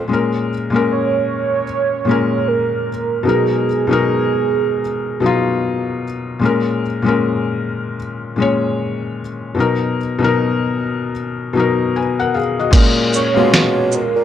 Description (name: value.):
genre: lo-fi hip hop.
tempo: 76 BPM.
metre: 4/4.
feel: swing 61% on 16ths.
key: Bb phrygian.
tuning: A4 = 440 Hz.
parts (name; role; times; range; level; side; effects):
felt-muted upright piano; accompaniment; 0.0-14.2 s; Bb2 to Ab5; -17 LUFS; left 4 dB; none.
mellow bassoon; bass; 0.0, 12.7-14.2 s; Bb2 to Cb3; -20 LUFS; right 1 dB; none.
warm velvety synth lead; melody; 0.9-6.0, 13.1-14.2 s; Ab4 to Db5; -18 LUFS; right 8 dB; chorus.
lo-fi sampler-style drum kit; drums; 12.7-14.1 s; crash cymbal, hi-hat, kick drum, shaker, snare drum; -14 LUFS; right 1 dB; none.
room: moderate spring reverb, RT60 2.0 s, studio ambience.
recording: none.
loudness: -15 LUFS.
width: side -10 dB against mid.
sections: 0.1-12.7 A section; 12.7-14.2 B section.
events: none.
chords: 0.1 Bbm7; 3.3 Bmaj7; 6.4 Bbm7; 9.6 Bmaj7; 12.7 Bbm7.